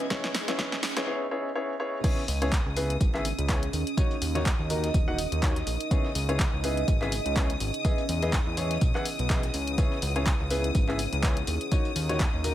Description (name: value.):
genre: piano house.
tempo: 124 BPM.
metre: 4/4.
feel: swing 56% on 16ths.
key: C# dorian.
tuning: A4 = 440 Hz.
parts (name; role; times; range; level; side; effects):
rich studio string section; sustained chords; 0.0-12.5 s; D#6 to G#6; -37 LUFS; left 6 dB; sidechain pumping.
clear upright piano; riff; 0.0-12.5 s; C#3 to F#5; -32 LUFS; left 1 dB; vintage 12-bit sampler grit, sidechain pumping, digital delay.
punchy analog drum machine; drums; 0.0-12.5 s; crash cymbal, handclaps, hi-hat, snare drum; -33 LUFS; equal; none.
deep dark ambient pad; texture; 0.0-12.5 s; C#4 to F#5; -36 LUFS; right 3 dB; chorus, built-in reverb, sidechain pumping.
electronic kick drum; drums; 0.1-12.3 s; none; -26 LUFS; equal; none.
fat analog bass; bass; 0.3-12.5 s; D#1 to E2; -31 LUFS; equal; sidechain pumping, high-pass filter.
dusty soul sampler-style drum kit; drums; 2.0-12.5 s; hi-hat, snare drum, tambourine; -43 LUFS; left 1 dB; none.
room: light reverb.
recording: high-pass filter.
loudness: -25 LUFS.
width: side -13 dB against mid.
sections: 0.0-2.0 A section; 2.0-12.5 B section.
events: build-up 0.0-2.0; drum fill 0.0-1.1; filter sweep on upright piano 0.0-2.0; filter sweep 0.0-2.0; drop 2.0-12.5.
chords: 0.1 Emaj7; 2.0 C#m7; 3.7 D#m7; 5.9 C#m7; 7.8 Emaj7; 9.8 C#m7; 11.5 D#m7.